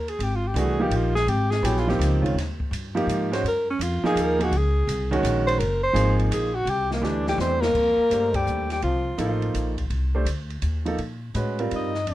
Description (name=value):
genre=modal jazz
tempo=167 BPM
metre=3/4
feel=swing 66% on 8ths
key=F mixolydian from 7.7 s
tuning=A4 = 440 Hz
part: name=breathy alto saxophone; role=melody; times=0.0-9.8, 11.8-12.1 s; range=Bb3 to Eb5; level=-25 LUFS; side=equal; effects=none
part: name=upright bass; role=bass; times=0.0-12.1 s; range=Gb1 to Bb2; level=-26 LUFS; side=equal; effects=none
part: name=open jazz drum kit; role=drums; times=0.1-12.1 s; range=crash cymbal, hi-hat, kick drum, ride cymbal, snare drum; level=-35 LUFS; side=equal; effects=none
part: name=warm concert grand piano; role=accompaniment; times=0.6-11.9 s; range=Eb3 to C5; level=-25 LUFS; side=right 2 dB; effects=none
part: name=breathy trombone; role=second line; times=7.4-12.1 s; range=F3 to Eb4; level=-30 LUFS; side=left 3 dB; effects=none
room=light reverb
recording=dark, warm production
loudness=-21 LUFS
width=side -14 dB against mid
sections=0.0-7.7 A section; 7.7-12.1 B section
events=alto saxophone solo 0.0-7.7; drum fill 7.0-7.7; band accent 8.3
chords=0.0 Abmaj9; 3.4 Gbmaj9; 6.7 C; 7.7 F13sus4